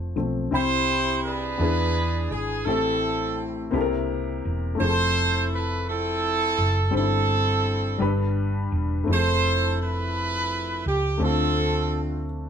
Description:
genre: slow gospel.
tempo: 56 BPM (dotted quarters).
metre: 6/8.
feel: straight.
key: C major.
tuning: A4 = 442 Hz.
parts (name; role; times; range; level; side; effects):
warm upright piano; accompaniment; 0.0-12.5 s; G2 to B5; -28 LUFS; left 4 dB; none.
hollow-body short-scale fingered electric bass; bass; 0.0-12.5 s; E1 to E2; -26 LUFS; right 1 dB; none.
warm horn section; melody; 0.5-12.2 s; C4 to C5; -24 LUFS; right 2 dB; none.
room: moderate studio reverb, RT60 0.6 s.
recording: band playing live in one room.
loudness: -22 LUFS.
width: side -8 dB against mid.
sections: 0.5-12.5 A section.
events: upright piano fill 12.3.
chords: 0.0 F; 0.5 Cmaj7; 1.6 E7; 2.7 Am7; 3.7 C7; 4.8 Fmaj7; 6.9 C/G; 8.0 G; 9.1 Fmaj7; 11.2 Dm7.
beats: | 0.52 1.59 | 2.66 3.73 | 4.80 5.87 | 6.94 8.01 | 9.07 10.14 | 11.21 12.28.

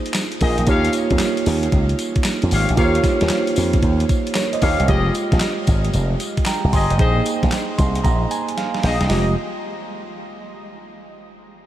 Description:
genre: R&B, new jack swing.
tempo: 114 BPM.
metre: 4/4.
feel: swing 66% on 16ths.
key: F minor.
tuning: A4 = 440 Hz.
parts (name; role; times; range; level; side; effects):
mellow tine electric piano; accompaniment; 0.0-9.3 s; Ab3 to C6; -22 LUFS; right 3 dB; lush chorus.
crisp 8-bit digital drum machine; drums; 0.1-9.3 s; handclaps, hi-hat, kick drum, snare drum, tambourine; -21 LUFS; equal; overdrive.
mellow horn section; stabs; 0.4-9.3 s; G4 to F5; -27 LUFS; left 4 dB; tape echo.
slap bass with an envelope filter; bass; 0.4-9.3 s; F1 to F2; -19 LUFS; equal; none.
room: moderate huge ambient reverb, RT60 8.2 s.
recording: dreamy mix soaked in reverb.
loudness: -16 LUFS.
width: side -12 dB against mid.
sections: 0.0-4.9 A section; 4.9-9.1 B section; 9.1-11.2 C section.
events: tine electric piano fill 7.5-9.1; drum fill 8.6-9.1.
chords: 0.0 Bb9sus4; 0.7 Eb9; 4.9 Fm9; 7.0 Bb9sus4; 9.1 Fm9.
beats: 0.15 | 0.67 1.20 1.73 2.25 | 2.78 3.31 3.83 4.36 | 4.88 5.41 5.94 6.46 | 6.99 7.52 8.04 8.57 | 9.10.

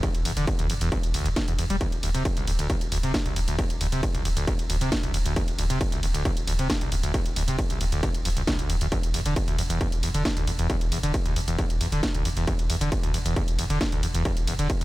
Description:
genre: driving peak-time techno.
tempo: 135 BPM.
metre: 4/4.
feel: straight.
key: unclear.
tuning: A4 = 441 Hz.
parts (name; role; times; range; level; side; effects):
screaming distorted acid line; riff; 0.0-14.8 s; C2 to G3; -29 LUFS; equal; distortion, wide subtle chorus, sidechain pumping, dub echo.
saturated sub bass; bass; 0.0-14.8 s; D1 to E1; -30 LUFS; equal; tube saturation, sidechain pumping, low-pass filter.
electronic kick drum; drums; 0.0-14.8 s; none; -27 LUFS; equal; distortion.
techno drum kit; drums; 0.0-14.8 s; hi-hat, ride cymbal, snare drum; -32 LUFS; right 1 dB; sidechain pumping on hats, sidechain pumping on cymbals.
room: little or no reverb.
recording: none.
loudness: -23 LUFS.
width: side -18 dB against mid.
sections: 0.0-14.8 A section.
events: none.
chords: 0.0 N.C.; 8.9 Dsus2/E.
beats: | 0.03 0.47 0.92 1.36 | 1.81 2.25 2.70 3.14 | 3.59 4.03 4.47 4.92 | 5.36 5.81 6.25 6.70 | 7.14 7.59 8.03 8.47 | 8.92 9.36 9.81 10.25 | 10.70 11.14 11.59 12.03 | 12.47 12.92 13.36 13.81 | 14.25 14.70.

